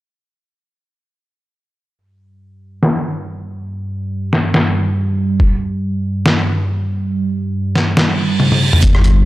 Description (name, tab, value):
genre	deep dubstep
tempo	140 BPM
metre	4/4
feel	swing 56% on 16ths, half-time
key	unclear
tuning	A4 = 436 Hz
part	dark analog pad	sustained chords	3.1-9.3 s	G3	-19 LUFS	right 2 dB	chorus, phaser, vintage 12-bit sampler grit
part	trip hop sampler-style drum kit	drums	2.8-9.1 s	hi-hat, rim click, snare drum, toms	-15 LUFS	left 1 dB	low-pass filter on snare, low-pass filter on toms, low-pass filter on hats, low-pass filter on room
part	electronic kick drum	drums	5.4-5.5, 8.8-8.9 s	none	-14 LUFS	equal	none
part	reverse cymbal	sound effects	8.1-8.8 s	none	-20 LUFS	right 4 dB	none
part	saturated sub bass	bass	8.8-9.3 s	G1	-11 LUFS	equal	transformer saturation
room	light reverb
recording	dry, gritty hardware recording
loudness	-14 LUFS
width	side -16 dB against mid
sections	2.0-8.8 A section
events	filter sweep on drum 2.0-8.8; filter sweep on analog synth pad 2.0-8.8; kick drops out 7.1-8.8; reverse cymbal 8.1-8.8; drum fill 8.4-8.8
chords	none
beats	| 1.97 2.40 2.83 3.26 | 3.69 4.11 4.54 4.97 | 5.40 5.83 6.26 6.68 | 7.11 7.54 7.97 8.40 | 8.83